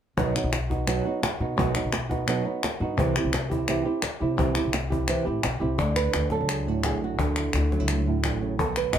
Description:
flamenco; 171 BPM; 4/4; straight; A4 = 441 Hz
flamenco guitar; melody; 0.2-9.0 s; A2 to D#5; -26 LUFS; right 4 dB
upright bass; bass; 0.2-9.0 s; A1 to C3; -28 LUFS; left 1 dB
cajon; percussion; 0.2-9.0 s; -31 LUFS; left 2 dB
palmas hand claps; percussion; 0.2-9.0 s; -30 LUFS; left 4 dB
light reverb; -23 LUFS; side -9 dB against mid
0.2-5.8 A section; 5.8-9.0 B section
0.2 B; 3.0 C; 5.8 Dadd9
| 0.18 0.53 0.88 1.23 | 1.58 1.93 2.28 2.63 | 2.99 3.34 3.69 4.04 | 4.39 4.74 5.09 5.44 | 5.79 6.14 6.49 6.84 | 7.19 7.54 7.89 8.24 | 8.59 8.94

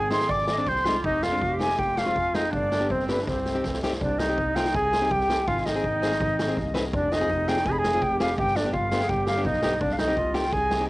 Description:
klezmer; 164 BPM; 4/4; straight; C harmonic minor; A4 = 440 Hz
concert flute; melody; 0.0-10.9 s; B4 to D6; -26 LUFS; left 1 dB; tape echo
warm clarinet; second line; 0.0-10.9 s; C4 to Eb5; -29 LUFS; right 2 dB; cassette tape
warm double bass; bass; 0.0-10.7 s; F1 to C2; -31 LUFS; equal
nylon-string guitar; accompaniment; 0.1-10.9 s; Ab3 to B4; -32 LUFS; left 2 dB; cassette tape
street-band drum kit; drums; 0.1-10.8 s; kick drum, snare drum; -30 LUFS; equal; cassette tape
light reverb, small room reverb; home recording on cassette, nothing above 10.4 kHz; -22 LUFS; side -20 dB against mid
0.0-4.0 A section; 4.0-10.9 A section
speeding up 0.0-10.9; drum fill 3.3-4.0
0.0 Ab; 1.0 Fm; 2.5 G; 3.3 Cm; 5.5 Ab; 6.9 Fm; 8.4 G; 9.8 Cm
0.30 0.67 | 1.04 1.42 1.79 2.16 | 2.53 2.90 3.27 3.64 | 4.01 4.38 4.74 5.11 | 5.47 5.84 6.20 6.57 | 6.93 7.29 7.66 8.02 | 8.38 8.74 9.10 9.46 | 9.82 10.18 10.54 10.89

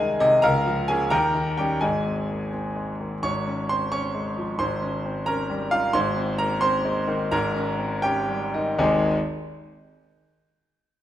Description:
classical, virtuoso piano study; 77-90 BPM (dotted quarters); 6/8; rubato; Ab major; A4 = 440 Hz
clear grand piano; solo; 0.0-9.2 s; Ab1 to Db6; -22 LUFS; equal
moderate recital hall reverb, RT60 1.5 s; -22 LUFS; side -12 dB against mid
0.0-3.2 A section; 3.2-8.8 B section; 8.8-10.3 C section
slowing down 5.3-8.8
0.4 Bbm/Db; 1.1 Eb7; 1.8 Ab; 3.2 Db/Ab; 4.6 Eb7/Ab; 5.9 Ab; 7.3 Eb7/Ab; 8.8 Ab
| 0.43 1.11 | 1.82 2.53 | 3.24 3.92 | 4.60 5.27 | 5.94 6.62 | 7.31 8.03 | 8.79

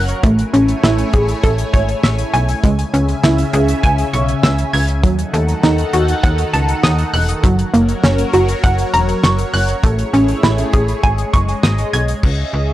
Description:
synth-pop; 100 BPM; 4/4; straight; C# minor; A4 = 440 Hz
lush unison pad; sustained chords; 0.0-12.7 s; C#3 to G#5; -21 LUFS; equal; chorus, phaser
analog pluck; arpeggios; 0.0-12.1 s; F#3 to G#6; -18 LUFS; right 1 dB; chorus, analog delay
slap-like FM bass; bass; 0.0-12.7 s; E1 to D#2; -17 LUFS; equal
damped 70s drum kit; drums; 0.1-12.4 s; crash cymbal, hi-hat, kick drum, snare drum; -17 LUFS; equal
light reverb, small room ambience; dry, gritty hardware recording, cassette tape; -13 LUFS; side -14 dB against mid
0.0-12.2 A section
0.2 Amaj7; 2.6 C#m; 5.0 D#dim; 7.4 F#; 9.8 Amaj7; 11.0 G#sus4
| 0.23 0.83 1.44 2.04 | 2.63 3.23 3.83 4.43 | 5.04 5.63 6.24 6.83 | 7.43 8.04 8.63 9.23 | 9.84 10.44 11.04 11.63 | 12.23

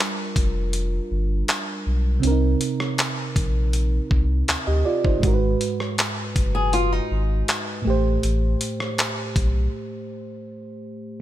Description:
contemporary R&B; 80 BPM; 4/4; straight; A4 = 442 Hz
mellow FM electric piano; accompaniment; 0.0-11.2 s; Ab2 to Eb5; -26 LUFS; right 3 dB; chorus
dusty soul sampler-style drum kit; drums; 0.0-9.5 s; handclaps, hi-hat, kick drum, rim click; -23 LUFS; equal
warm sub bass; bass; 0.4-9.7 s; F1 to D2; -22 LUFS; equal
flamenco guitar; arpeggios; 6.5-7.8 s; Eb4 to Ab4; -25 LUFS; left 3 dB; tape echo
little or no reverb; -20 LUFS; side -13 dB against mid
0.0-11.2 A section
break 9.7-11.2
0.0 Gm7; 2.2 Cm7; 5.2 Abm7; 7.9 Am7
0.73 1.49 | 2.23 2.98 3.73 4.49 | 5.24 5.99 6.74 7.49 | 8.23 8.98 9.73 10.48

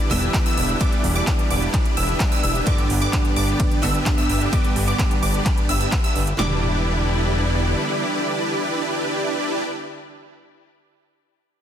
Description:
EDM, festival progressive house; 129 BPM; 4/4; straight; E minor; A4 = 441 Hz
picked steel-string acoustic guitar; accompaniment; 0.0-9.6 s; G2 to D4; -27 LUFS; right 3 dB; sidechain pumping, ping-pong delay
warm symphonic string section; sustained chords; 0.0-9.6 s; D3 to G4; -31 LUFS; left 2 dB; sidechain pumping
wide unison pluck; arpeggios; 0.0-9.6 s; D6 to E6; -28 LUFS; equal; phaser, sidechain pumping, ping-pong delay
supersaw chords; riff; 0.0-9.6 s; B3 to E5; -25 LUFS; right 1 dB; analog chorus, sidechain pumping, ping-pong delay
fat analog bass; bass; 0.1-7.7 s; E1 to G1; -23 LUFS; equal; sidechain pumping
big-room dance drum kit; drums; 0.1-6.4 s; handclaps, hi-hat, ride cymbal; -29 LUFS; right 2 dB; overdrive
big-room dance drum kit; drums; 0.3-6.5 s; handclaps, kick drum, snare drum, toms; -22 LUFS; equal; overdrive
light reverb, digital ambience; dense, heavily limited modern master; -18 LUFS; side -9 dB against mid
0.0-6.4 A section; 6.4-10.1 B section
drop 0.0-6.4
0.0 Em7; 2.7 G; 6.4 Em7
0.34 | 0.81 1.27 1.74 2.20 | 2.67 3.13 3.60 4.06 | 4.53 4.99 5.46 5.92 | 6.39 6.85 7.32 7.78 | 8.25 8.71 9.18

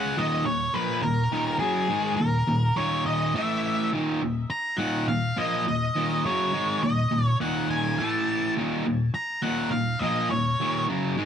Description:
rock; 103 BPM; 4/4; straight; Eb minor; A4 = 440 Hz
octave-fuzz lead guitar; melody; 0.0-10.8 s; Ab4 to Bb5; -27 LUFS; left 1 dB; distortion
distorted electric guitar; riff; 0.0-11.3 s; Eb2 to Db4; -25 LUFS; equal; distortion
digital ambience; dry, close 1970s-style studio recording; -23 LUFS; side -8 dB against mid
0.2-11.3 A section
0.2 Ebm; 3.3 A5; 3.9 Ebm; 8.0 A5; 8.6 Ebm
| 0.17 0.75 1.32 1.90 | 2.48 3.05 3.63 4.21 | 4.79 5.37 5.95 6.53 | 7.11 7.70 8.28 8.86 | 9.44 10.02 10.60 11.18

